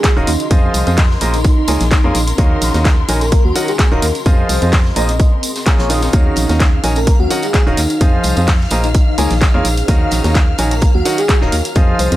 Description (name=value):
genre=piano house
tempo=128 BPM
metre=4/4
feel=swing 54% on 16ths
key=Eb dorian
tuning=A4 = 439 Hz
part: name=airy dreamy lead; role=melody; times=0.0-12.2 s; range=Eb4 to Eb5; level=-22 LUFS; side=equal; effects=chorus, analog delay
part: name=warm studio string section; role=sustained chords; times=0.0-12.2 s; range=Bb4 to F6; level=-28 LUFS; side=left 4 dB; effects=sidechain pumping
part: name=electronic kick drum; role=drums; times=0.0-11.9 s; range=none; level=-12 LUFS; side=equal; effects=none
part: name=modern studio drum kit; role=drums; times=0.0-12.1 s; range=hi-hat, snare drum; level=-31 LUFS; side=right 2 dB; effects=none
part: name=punchy analog drum machine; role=drums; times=0.0-12.2 s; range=handclaps, hi-hat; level=-22 LUFS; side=equal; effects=none
part: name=tambourine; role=percussion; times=0.0-12.2 s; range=none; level=-27 LUFS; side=left 1 dB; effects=none
part: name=granular cloud pad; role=texture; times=0.0-12.2 s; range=C4 to F5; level=-27 LUFS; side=right 2 dB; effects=built-in reverb, sidechain pumping
part: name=clear concert grand piano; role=riff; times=0.2-12.2 s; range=Eb3 to Bb5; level=-20 LUFS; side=right 1 dB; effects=sidechain pumping, low-pass filter, analog delay
part: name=organ-like FM bass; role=bass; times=0.2-12.2 s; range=Eb1 to F2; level=-17 LUFS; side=equal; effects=sidechain pumping
room=studio reverb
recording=dry, gritty hardware recording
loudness=-11 LUFS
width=side -15 dB against mid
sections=0.0-12.2 A section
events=none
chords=0.0 Ebm9; 0.5 Fm7; 1.4 Bbm7; 2.4 Ebm9; 4.3 Fm7; 5.2 Bbm7; 6.1 Ebm9; 8.0 Fm7; 8.9 Bbm7; 9.9 Ebm9